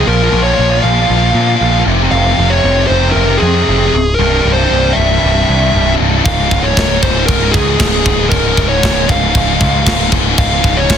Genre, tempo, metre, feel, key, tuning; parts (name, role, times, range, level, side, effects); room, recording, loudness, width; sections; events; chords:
heavy metal; 116 BPM; 4/4; straight; A4 = 440 Hz
dark smooth lead guitar; melody; 0.0-11.0 s; Ab4 to F5; -15 LUFS; equal; overdrive
high-gain distorted guitar; riff; 0.0-11.0 s; C2 to F3; -14 LUFS; equal; distortion
growling picked electric bass; bass; 0.0-11.0 s; C1 to Bb2; -15 LUFS; equal; overdrive
tight metal drum kit; drums; 6.3-11.0 s; crash cymbal, kick drum, snare drum; -14 LUFS; equal
little or no reverb; dense, heavily limited modern master; -9 LUFS; side -8 dB against mid
0.0-11.0 A section
0.1 Bb5; 1.9 Fm; 4.2 C; 6.2 Db